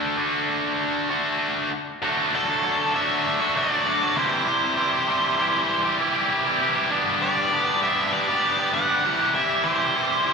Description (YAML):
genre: rock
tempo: 98 BPM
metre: 4/4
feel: straight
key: unclear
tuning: A4 = 440 Hz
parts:
  - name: tight distorted guitar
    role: riff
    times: 0.0-10.3 s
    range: G2 to G4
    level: -21 LUFS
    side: equal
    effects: distortion, slapback echo
  - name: octave-fuzz lead guitar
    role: melody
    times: 2.4-10.3 s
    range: A4 to F#5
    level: -24 LUFS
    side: equal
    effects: distortion
room: moderate club reverb, RT60 0.5 s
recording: live gig heard through the venue's PA, recital hall reverb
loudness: -20 LUFS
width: side -5 dB against mid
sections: 0.0-2.0 A section; 2.0-10.3 B section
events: none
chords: 0.0 D; 4.2 C; 6.9 G; 9.0 C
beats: 0.18 0.80 1.41 | 2.03 2.64 3.25 3.87 | 4.48 5.09 5.70 6.30 | 6.91 7.52 8.13 8.74 | 9.34 9.95